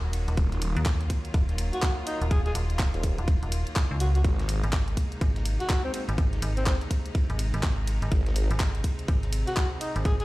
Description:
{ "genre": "bass house", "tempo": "124 BPM", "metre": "4/4", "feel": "swing 61% on 16ths", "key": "unclear", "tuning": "A4 = 440 Hz", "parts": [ { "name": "clear studio string section", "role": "sustained chords", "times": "0.0-10.2 s", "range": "C3 to Gb4", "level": "-38 LUFS", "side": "equal", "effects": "sidechain pumping, low-pass filter" }, { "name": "metallic FM bass", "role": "bass", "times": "0.0-10.2 s", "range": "Eb1 to Eb2", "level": "-27 LUFS", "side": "equal", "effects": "sidechain pumping" }, { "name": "dusty soul sampler-style drum kit", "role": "drums", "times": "0.1-10.2 s", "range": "ride cymbal, snare drum", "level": "-46 LUFS", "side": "right 1 dB", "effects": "none" }, { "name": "garage drum kit", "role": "drums", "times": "0.1-10.2 s", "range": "handclaps, hi-hat, ride cymbal", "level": "-36 LUFS", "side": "equal", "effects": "overdrive" }, { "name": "phased detuned saw bass", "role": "bass", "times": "0.4-4.6, 8.1-8.5 s", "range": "Eb1 to Ab1", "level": "-27 LUFS", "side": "equal", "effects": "phaser, overdrive, sidechain pumping" }, { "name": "electronic kick drum", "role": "drums", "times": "0.4-10.2 s", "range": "none", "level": "-25 LUFS", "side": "equal", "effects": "overdrive" }, { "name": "breathy alto saxophone", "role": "melody", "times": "1.7-10.2 s", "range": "C4 to Ab4", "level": "-33 LUFS", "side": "equal", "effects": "tape echo" } ], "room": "digital ambience", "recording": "played on a big sound system in a bare room, large studio reverb", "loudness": "-24 LUFS", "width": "side -19 dB against mid", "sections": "0.0-10.2 A section", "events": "none", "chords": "0.0 Ebm; 4.2 Abadd9" }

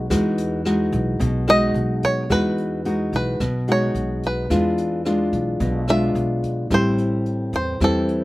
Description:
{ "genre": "bossa nova", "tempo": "109 BPM", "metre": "4/4", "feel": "straight", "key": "E major", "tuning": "A4 = 440 Hz", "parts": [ { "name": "nylon-string guitar", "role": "accompaniment", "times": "0.0-8.2 s", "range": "A2 to F#4", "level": "-21 LUFS", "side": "left 1 dB", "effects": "none" }, { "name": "upright bass", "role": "bass", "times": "0.0-8.2 s", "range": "A1 to E2", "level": "-26 LUFS", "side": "equal", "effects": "none" }, { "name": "jazz brush drum kit", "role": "drums", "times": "0.1-8.2 s", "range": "hi-hat, kick drum, rim click", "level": "-32 LUFS", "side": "equal", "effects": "none" }, { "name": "bluegrass banjo", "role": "melody", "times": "1.5-8.2 s", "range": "A4 to E5", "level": "-22 LUFS", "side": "right 1 dB", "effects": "none" } ], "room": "little or no reverb", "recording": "none", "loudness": "-18 LUFS", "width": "side -18 dB against mid", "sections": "0.0-2.3 A section; 2.3-8.2 B section", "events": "five-string banjo solo 0.0-2.3", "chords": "0.0 Emaj9; 4.5 E7b9; 6.7 Am7" }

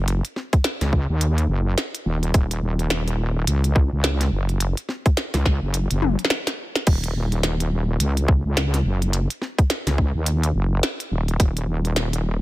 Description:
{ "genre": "glitch hop", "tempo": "106 BPM", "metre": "4/4", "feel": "swing 60% on 16ths", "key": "Eb minor", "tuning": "A4 = 438 Hz", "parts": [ { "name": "wobble bass", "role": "bass", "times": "0.0-12.4 s", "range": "Eb1 to Eb2", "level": "-21 LUFS", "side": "equal", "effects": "chorus" }, { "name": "glitchy drum kit", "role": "drums", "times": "0.1-12.2 s", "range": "crash cymbal, hi-hat, snare drum, toms", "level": "-25 LUFS", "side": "left 1 dB", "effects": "none" }, { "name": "electronic kick drum", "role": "drums", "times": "0.5-11.5 s", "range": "none", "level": "-17 LUFS", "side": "equal", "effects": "overdrive" } ], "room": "digital ambience", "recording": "none", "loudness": "-19 LUFS", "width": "side -17 dB against mid", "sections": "0.0-12.4 A section", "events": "drum fill 6.0-6.9", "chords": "none" }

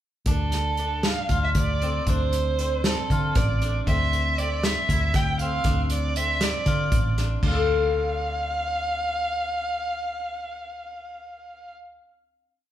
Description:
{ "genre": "progressive instrumental, band music in an uneven meter", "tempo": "235 BPM (eighths)", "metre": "7/8", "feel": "straight", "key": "D minor", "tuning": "A4 = 442 Hz", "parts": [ { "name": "dark violin", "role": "melody", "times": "0.3-11.7 s", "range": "A4 to G5", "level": "-28 LUFS", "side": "right 2 dB", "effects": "none" }, { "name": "steel-string zither", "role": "arpeggios", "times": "0.3-12.1 s", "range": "C4 to D5", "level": "-29 LUFS", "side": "left 4 dB", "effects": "none" }, { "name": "hollow-body short-scale picked electric bass", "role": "bass", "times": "0.3-12.0 s", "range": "A1 to D3", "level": "-26 LUFS", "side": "equal", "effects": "none" }, { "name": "unplugged drum kit", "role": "drums", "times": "0.3-7.6 s", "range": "crash cymbal, hi-hat, kick drum, snare drum", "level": "-26 LUFS", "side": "equal", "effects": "none" } ], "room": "moderate large studio reverb, RT60 1.3 s", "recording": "band playing live in one room", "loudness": "-22 LUFS", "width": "side -12 dB against mid", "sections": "0.3-7.4 A section; 7.4-11.0 final chord", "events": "none", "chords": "0.3 Dm7; 3.9 Dm9; 5.7 Dm7; 7.4 Dm" }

